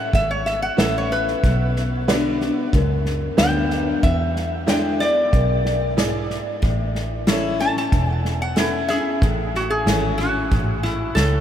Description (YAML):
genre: honky-tonk and classic country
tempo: 93 BPM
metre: 4/4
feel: straight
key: A major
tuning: A4 = 444 Hz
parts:
  - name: lap resonator guitar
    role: melody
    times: 0.0-11.4 s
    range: E4 to A5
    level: -24 LUFS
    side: equal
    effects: none
  - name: picked steel-string acoustic guitar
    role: accompaniment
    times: 0.0-11.4 s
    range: E2 to F#4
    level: -25 LUFS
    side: left 3 dB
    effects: none
  - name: tack piano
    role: accompaniment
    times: 0.0-11.4 s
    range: F#3 to E5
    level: -30 LUFS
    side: right 6 dB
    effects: none
  - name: vintage muted fingered electric bass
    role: bass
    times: 0.1-11.4 s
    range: E1 to E2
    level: -24 LUFS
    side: equal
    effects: none
  - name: unplugged drum kit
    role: drums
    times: 0.1-11.3 s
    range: hi-hat, kick drum, snare drum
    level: -24 LUFS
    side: equal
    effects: none
room: moderate huge ambient reverb, RT60 8.9 s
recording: in a vast, echoing space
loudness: -18 LUFS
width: side -10 dB against mid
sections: 0.0-9.2 A section; 9.2-11.4 B section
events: resonator guitar played with a steel bar solo 0.0-9.2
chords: 0.0 A; 1.4 Bm; 4.0 E7; 6.6 A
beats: 0.14 0.79 | 1.44 2.08 2.73 3.38 | 4.03 4.68 5.33 5.97 | 6.62 7.27 7.92 8.57 | 9.21 9.86 10.51 11.16